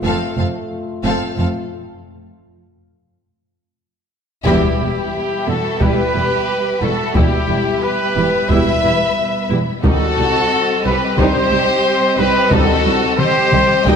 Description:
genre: cinematic, epic orchestral film score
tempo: 89 BPM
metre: 4/4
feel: straight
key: E harmonic minor from 4.5 s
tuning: A4 = 441 Hz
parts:
  - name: warm symphonic violin section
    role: melody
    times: 0.0-14.0 s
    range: G4 to G5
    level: -23 LUFS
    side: left 5 dB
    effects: none
  - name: warm symphonic violin section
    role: second line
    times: 0.0-14.0 s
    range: E4 to Eb5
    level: -24 LUFS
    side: left 2 dB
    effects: none
  - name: dark symphonic viola section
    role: accompaniment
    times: 0.0-14.0 s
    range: G3 to E4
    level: -25 LUFS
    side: right 1 dB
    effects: none
  - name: warm French horn section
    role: sustained chords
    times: 0.0-14.0 s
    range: G3 to G4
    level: -28 LUFS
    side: left 5 dB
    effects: none
  - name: warm symphonic cello section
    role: bass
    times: 0.0-13.9 s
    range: C2 to F2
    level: -24 LUFS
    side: right 3 dB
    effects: none
  - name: warm symphonic double bass section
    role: bass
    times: 0.0-13.9 s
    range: E1 to C2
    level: -23 LUFS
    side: right 2 dB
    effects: none
  - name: warm symphonic string section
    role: sustained chords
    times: 4.4-14.0 s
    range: G3 to B5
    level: -24 LUFS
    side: left 2 dB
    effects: none
  - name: dark trombone section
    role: sustained chords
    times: 4.5-14.0 s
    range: G2 to E3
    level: -29 LUFS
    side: right 3 dB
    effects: none
  - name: bright trumpet section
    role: stabs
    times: 4.5-14.0 s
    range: G4 to G5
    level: -18 LUFS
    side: right 1 dB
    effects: none
  - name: taiko ensemble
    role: drums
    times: 4.5-14.0 s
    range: none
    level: -20 LUFS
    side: left 1 dB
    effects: none
room: wet scoring stage reverb, RT60 1.9 s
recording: none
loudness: -14 LUFS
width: side -6 dB against mid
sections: 0.0-4.5 A section; 4.5-14.0 B section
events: build-up 0.0-4.5; break 1.7-4.5; band accent 4.5-5.1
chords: 0.0 F; 1.7 N.C.; 4.5 Em; 9.8 Cm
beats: 0.38 1.05 | 1.72 2.40 3.08 3.77 | 4.46 5.14 5.81 6.48 | 7.15 7.82 8.50 9.17 | 9.84 10.51 11.18 11.85 | 12.52 13.19 13.87

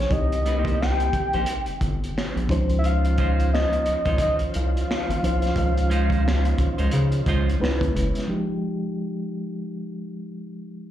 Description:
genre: R&B, neo-soul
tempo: 88 BPM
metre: 4/4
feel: swing 58% on 16ths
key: F minor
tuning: A4 = 439 Hz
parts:
  - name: soft octave-layered synth lead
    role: melody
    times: 0.0-7.6 s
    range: Db5 to G5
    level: -27 LUFS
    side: left 1 dB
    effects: chorus, slapback echo, tape echo
  - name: mellow reed electric piano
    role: accompaniment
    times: 0.0-10.9 s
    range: F3 to C5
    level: -29 LUFS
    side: left 1 dB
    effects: fast tremolo, slapback echo
  - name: round analog bass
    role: bass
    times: 0.0-8.1 s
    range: Gb1 to Db3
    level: -22 LUFS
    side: equal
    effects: none
  - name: crunchy breakbeat drum kit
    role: drums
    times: 0.0-8.3 s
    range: finger snaps, hi-hat, kick drum, snare drum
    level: -28 LUFS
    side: equal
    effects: none
  - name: clean electric guitar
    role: second line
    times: 0.5-7.5 s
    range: Ab3 to C5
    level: -31 LUFS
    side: right 6 dB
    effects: spring reverb, slapback echo
  - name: tonewheel organ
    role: sustained chords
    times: 2.8-8.3 s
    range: Ab3 to C5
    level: -35 LUFS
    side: equal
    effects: chorus vibrato, fast rotary speaker
room: light reverb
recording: live gig heard through the venue's PA, club reverb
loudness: -21 LUFS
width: side -12 dB against mid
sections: 0.0-8.3 A section; 8.3-10.9 B section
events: none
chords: 0.0 Cm7; 2.5 Dbmaj9; 7.6 Dbm7; 8.3 Fm9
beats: | 0.10 0.79 1.47 2.15 | 2.83 3.51 4.20 4.88 | 5.56 6.24 6.92 7.61 | 8.29 8.97 9.65 10.33

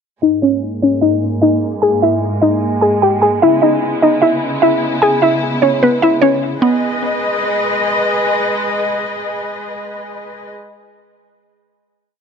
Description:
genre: hip hop, trap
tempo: 150 BPM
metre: 4/4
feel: half-time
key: G# minor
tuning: A4 = 438 Hz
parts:
  - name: mallet-like synth pluck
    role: melody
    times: 0.2-7.8 s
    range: B3 to G#5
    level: -13 LUFS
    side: equal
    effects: chorus, low-pass filter, ping-pong delay
  - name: dark studio string section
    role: sustained chords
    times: 0.2-10.5 s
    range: G#2 to D#5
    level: -18 LUFS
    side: equal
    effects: low-pass filter
room: moderate plate reverb, RT60 2.8 s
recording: dark, warm production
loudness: -12 LUFS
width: side -6 dB against mid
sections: 0.2-6.6 breakdown; 6.6-9.8 final chord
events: filter sweep 0.2-6.6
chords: 0.2 G#sus2; 3.4 C#m7; 6.6 G#m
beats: | 0.22 0.62 1.02 1.42 | 1.82 2.22 2.62 3.02 | 3.42 3.82 4.22 4.62 | 5.02 5.42 5.82 6.22 | 6.62 7.02 7.42 7.82 | 8.22 8.62 9.02 9.42

